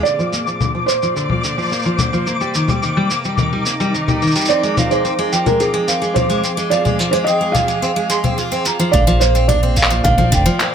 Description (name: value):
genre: folktronica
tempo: 108 BPM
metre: 4/4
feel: straight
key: unclear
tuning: A4 = 440 Hz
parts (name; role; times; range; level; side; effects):
- felt-muted upright piano; melody; 0.0-10.7 s; Ab4 to F5; -19 LUFS; right 3 dB; digital delay
- dark string quartet; sustained chords; 0.0-10.7 s; Bb2 to F5; -25 LUFS; left 1 dB; none
- picked steel-string acoustic guitar; arpeggios; 0.0-10.7 s; D3 to F4; -20 LUFS; equal; low-pass filter, digital delay
- flickering grainy texture; texture; 0.0-8.9 s; D6; -25 LUFS; left 4 dB; built-in reverb
- electronic shaker, congas and handclaps; drums; 0.1-10.7 s; none; -20 LUFS; left 2 dB; none
- marimba with medium hard mallets; second line; 4.8-10.6 s; F5 to C6; -24 LUFS; right 3 dB; digital delay
- upright bass; bass; 8.9-10.4 s; F1 to Bb1; -16 LUFS; equal; none
- electronic kick drum; drums; 8.9-10.4 s; none; -19 LUFS; equal; none
room: moderate studio ambience, RT60 0.5 s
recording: none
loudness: -14 LUFS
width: side -8 dB against mid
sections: 0.0-8.9 A section; 8.9-10.7 B section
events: filter sweep on steel-string acoustic guitar 0.0-8.9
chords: 0.0 Bbadd9; 2.3 Cm7; 4.5 Fm; 8.9 Bbadd9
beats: | 0.05 0.60 1.16 1.72 | 2.27 2.83 3.38 3.94 | 4.49 5.05 5.61 6.16 | 6.72 7.27 7.83 8.38 | 8.94 9.49 10.05 10.61